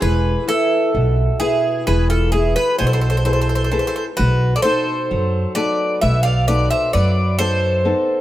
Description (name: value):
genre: greek folk, Greek bouzouki band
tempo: 130 BPM (eighths)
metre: 9/8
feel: straight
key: unclear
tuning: A4 = 440 Hz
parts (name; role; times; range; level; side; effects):
- Greek bouzouki; melody; 0.0-8.2 s; G#4 to F5; -20 LUFS; equal; none
- mandolin; second line; 0.0-8.2 s; E4 to D5; -25 LUFS; right 4 dB; none
- flamenco guitar; accompaniment; 0.0-8.2 s; B2 to B4; -22 LUFS; left 2 dB; none
- upright bass; bass; 0.0-7.9 s; E1 to F#2; -18 LUFS; equal; none
room: moderate plate reverb, RT60 2.9 s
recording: heard from further back in the room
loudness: -15 LUFS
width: side -13 dB against mid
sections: 0.0-8.2 A section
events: none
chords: 0.0 E; 4.2 B7